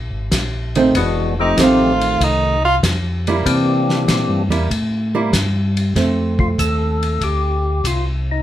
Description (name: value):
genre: soul jazz organ trio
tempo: 96 BPM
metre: 4/4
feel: swing 69% on 8ths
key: F mixolydian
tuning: A4 = 440 Hz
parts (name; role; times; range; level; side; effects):
- mellow tonewheel organ; bass; 0.0-8.4 s; F1 to C3; -20 LUFS; equal; slow rotary speaker
- warm soul drum kit; drums; 0.3-8.0 s; hi-hat, kick drum, ride cymbal, snare drum; -23 LUFS; left 1 dB; none
- archtop guitar, miked and amplified; accompaniment; 0.8-7.7 s; Eb3 to E4; -18 LUFS; right 3 dB; none
- percussive tonewheel organ; melody; 1.0-8.4 s; E3 to A4; -19 LUFS; left 3 dB; slow rotary speaker, overdrive
- bright tenor saxophone; melody; 1.4-2.8 s; Eb4 to F4; -17 LUFS; right 1 dB; none
room: wet club ambience, RT60 0.5 s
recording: heard from further back in the room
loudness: -15 LUFS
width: side -12 dB against mid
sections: 0.0-6.0 A section; 6.0-8.4 B section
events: tenor saxophone solo 0.0-6.0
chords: 0.0 Bb7(no3); 0.9 F7; 3.4 C7; 6.0 F7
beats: 0.31 | 0.94 1.57 2.19 2.82 | 3.45 4.07 4.70 5.33 | 5.96 6.58 7.21 7.84